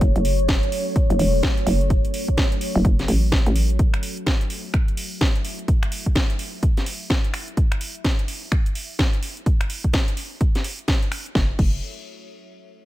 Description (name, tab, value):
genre	bass house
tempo	127 BPM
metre	4/4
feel	swing 61% on 16ths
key	F# minor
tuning	A4 = 440 Hz
part	deep dark ambient pad	sustained chords	0.0-11.6 s	F#4 to E5	-29 LUFS	equal	chorus, built-in reverb, sidechain pumping
part	hollow knocking FM bass	bass	0.0-3.8, 11.4-11.8 s	E1 to A1	-20 LUFS	equal	overdrive, sidechain pumping
part	electronic kick drum	drums	0.0-11.7 s	none	-20 LUFS	equal	none
part	house drum kit	drums	0.0-11.7 s	crash cymbal, finger snaps, hi-hat, snare drum	-27 LUFS	equal	none
room	little or no reverb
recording	none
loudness	-19 LUFS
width	side -15 dB against mid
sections	0.0-11.4 A section; 11.4-12.9 B section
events	filter sweep on ambient pad 0.0-11.4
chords	0.0 F#m